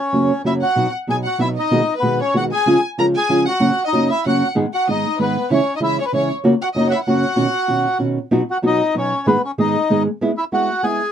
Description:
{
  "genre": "tango",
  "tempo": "191 BPM",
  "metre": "3/4",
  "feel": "rubato",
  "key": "B major",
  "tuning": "A4 = 440 Hz",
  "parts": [
    { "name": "bandoneon", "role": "melody", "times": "0.0-11.1 s", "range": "B3 to A#5", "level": "-19 LUFS", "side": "left 1 dB", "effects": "none" },
    { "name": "nylon-string guitar", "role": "accompaniment", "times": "0.1-11.0 s", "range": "F#2 to G#4", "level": "-17 LUFS", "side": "right 1 dB", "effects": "none" },
    { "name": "warm studio violin section", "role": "second line", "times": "0.5-8.0 s", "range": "B4 to A#5", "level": "-24 LUFS", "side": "left 2 dB", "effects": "none" }
  ],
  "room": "light reverb",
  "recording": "dark, warm production",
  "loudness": "-16 LUFS",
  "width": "side -9 dB against mid",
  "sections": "0.0-8.3 A section; 8.3-11.1 B section",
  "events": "none",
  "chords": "0.0 F#; 0.8 B; 1.7 G#m7/B; 2.7 C#; 3.6 F#; 4.6 G#m; 5.5 C#m; 6.4 F#; 7.4 Badd9; 9.3 G#m; 10.2 E/G#"
}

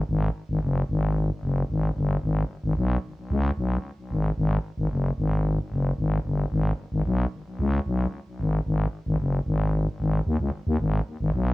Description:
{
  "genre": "funk",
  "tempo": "112 BPM",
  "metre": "4/4",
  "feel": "straight",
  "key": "G# minor",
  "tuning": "A4 = 439 Hz",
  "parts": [
    { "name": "growling FM bass", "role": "solo", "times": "0.0-11.5 s", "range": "F#1 to D#2", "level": "-23 LUFS", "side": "left 1 dB", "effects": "none" }
  ],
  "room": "light reverb",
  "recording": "home recording on cassette",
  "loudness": "-24 LUFS",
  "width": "side -17 dB against mid",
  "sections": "0.0-10.8 A section",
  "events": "none",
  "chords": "none"
}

